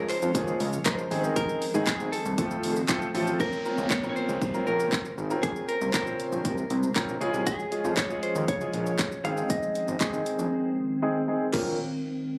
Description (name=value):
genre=dance-pop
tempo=118 BPM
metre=4/4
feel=straight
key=Bb minor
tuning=A4 = 440 Hz
part: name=direct-recorded clean electric guitar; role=melody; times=0.0-11.8 s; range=Ab4 to F5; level=-34 LUFS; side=equal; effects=low-pass filter
part: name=clear baby grand piano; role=accompaniment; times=0.0-11.8 s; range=Eb3 to C5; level=-33 LUFS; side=equal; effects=sidechain pumping, low-pass filter
part: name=glassy FM pad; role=sustained chords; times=0.0-11.8 s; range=Db3 to C5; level=-37 LUFS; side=equal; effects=ensemble chorus, built-in reverb, sidechain pumping, low-pass filter
part: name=fat analog bass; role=bass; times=0.0-11.8 s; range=F1 to F2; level=-33 LUFS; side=equal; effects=sidechain pumping
part: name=house drum kit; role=drums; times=0.1-11.7 s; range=crash cymbal, handclaps, hi-hat, kick drum, shaker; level=-33 LUFS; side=equal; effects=none
part: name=group handclap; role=percussion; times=0.1-3.0, 8.0-11.8 s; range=none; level=-38 LUFS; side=equal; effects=none
part: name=downlifter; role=sound effects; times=3.4-7.5 s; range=none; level=-40 LUFS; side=equal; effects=none
room=light reverb, digital ambience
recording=recorded on a phone in the room, club reverb, compression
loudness=-28 LUFS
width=mono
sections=0.0-3.4 A section; 3.4-11.5 B section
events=filter sweep 3.4-11.5; silent gap 10.5-11.5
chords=0.0 Db; 1.1 Ab; 2.4 F; 3.4 Bbmadd9; 7.2 Db; 9.2 Ab; 11.5 Bbmadd9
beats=0.35 0.86 | 1.36 1.87 2.38 2.89 | 3.40 3.91 4.42 4.92 | 5.43 5.94 6.45 6.96 | 7.47 7.97 8.48 8.99 | 9.50 10.01 10.52 11.03 | 11.53